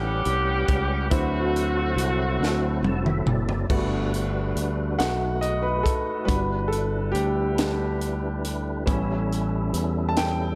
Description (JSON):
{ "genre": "slow gospel", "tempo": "46 BPM (dotted quarters)", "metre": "6/8", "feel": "straight", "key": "G major", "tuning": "A4 = 439 Hz", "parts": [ { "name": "edgy saxophone section", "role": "melody", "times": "0.0-3.3 s", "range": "A3 to G4", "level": "-29 LUFS", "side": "equal", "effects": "none" }, { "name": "clear baby grand piano", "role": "accompaniment", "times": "0.0-10.6 s", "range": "A2 to A5", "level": "-31 LUFS", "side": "equal", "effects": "none" }, { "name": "percussive tonewheel organ", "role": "sustained chords", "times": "0.0-10.6 s", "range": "F#3 to A5", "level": "-33 LUFS", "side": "equal", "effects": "slow rotary speaker, overdrive, chorus vibrato" }, { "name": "fingered electric bass", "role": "bass", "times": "0.0-10.6 s", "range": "F1 to E2", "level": "-29 LUFS", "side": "equal", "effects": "none" }, { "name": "crisp fusion drum kit", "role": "drums", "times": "0.3-10.4 s", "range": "crash cymbal, hi-hat, kick drum, snare drum, toms", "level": "-30 LUFS", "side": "equal", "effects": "none" } ], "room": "light reverb", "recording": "none", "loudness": "-25 LUFS", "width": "mono", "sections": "0.0-3.7 A section; 3.7-10.6 B section", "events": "drum fill 2.4-3.7; tonewheel organ fill 2.4-3.7; grand piano solo 3.7-10.6", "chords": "0.0 A13; 1.1 D13; 3.7 Gmaj7; 5.0 B7; 6.3 Em7/G; 8.9 A7" }